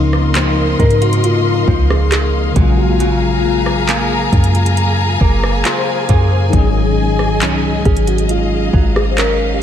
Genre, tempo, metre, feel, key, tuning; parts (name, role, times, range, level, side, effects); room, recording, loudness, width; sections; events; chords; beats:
contemporary R&B; 68 BPM; 4/4; straight; Db major; A4 = 442 Hz
tine electric piano; accompaniment; 0.0-9.6 s; Db3 to C5; -19 LUFS; left 5 dB; ensemble chorus
dark studio string section; sustained chords; 0.0-9.6 s; Ab4 to C6; -20 LUFS; left 2 dB; sidechain pumping
direct-recorded clean electric guitar; arpeggios; 0.0-9.6 s; Ab2 to Ab4; -22 LUFS; right 9 dB; spring reverb, ping-pong delay
soft 808-style bass; bass; 0.0-9.6 s; Gb1 to Ab2; -16 LUFS; equal
smooth R&B drum kit; drums; 0.1-9.4 s; handclaps, hi-hat, kick drum, rim click; -17 LUFS; equal
felt-muted upright piano; melody; 0.8-9.6 s; F4 to C5; -19 LUFS; left 1 dB; analog chorus, ping-pong delay
light reverb, digital ambience; -11 LUFS; side -9 dB against mid
0.0-9.6 A section
tine electric piano fill 5.2-6.5
0.0 Dbmaj13; 2.6 Gbmaj9; 6.5 Ab7sus4
0.35 1.24 2.12 | 3.00 3.88 4.76 5.65 | 6.53 7.41 8.29 9.18